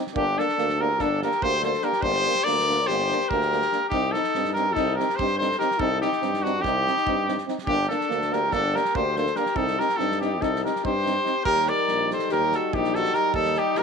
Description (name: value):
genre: balkan folk, Balkan brass band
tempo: 287 BPM (eighths)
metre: 9/8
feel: straight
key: unclear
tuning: A4 = 442 Hz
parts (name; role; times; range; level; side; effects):
- clear French horn; accompaniment; 0.0-13.8 s; D4 to Eb4; -32 LUFS; left 11 dB; none
- warm euphonium; accompaniment; 0.0-13.8 s; G3 to C4; -31 LUFS; right 14 dB; none
- clear alto saxophone; second line; 0.1-13.8 s; D4 to Bb4; -29 LUFS; left 10 dB; none
- loose indie drum kit; percussion; 0.1-13.8 s; kick drum, snare drum; -37 LUFS; right 4 dB; none
- clear trumpet; melody; 0.2-13.8 s; F#4 to D5; -24 LUFS; right 1 dB; none
- clear tuba; bass; 0.2-13.8 s; G1 to G2; -30 LUFS; right 1 dB; none
room: moderate echo chamber reverb, RT60 1.5 s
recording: 1960s-style stereo with parts hard left and right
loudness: -21 LUFS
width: side -5 dB against mid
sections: 0.0-11.5 A section; 11.5-13.8 B section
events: none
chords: 0.2 Gm; 3.9 Cm; 7.7 Gm; 9.6 Cm; 11.5 Eb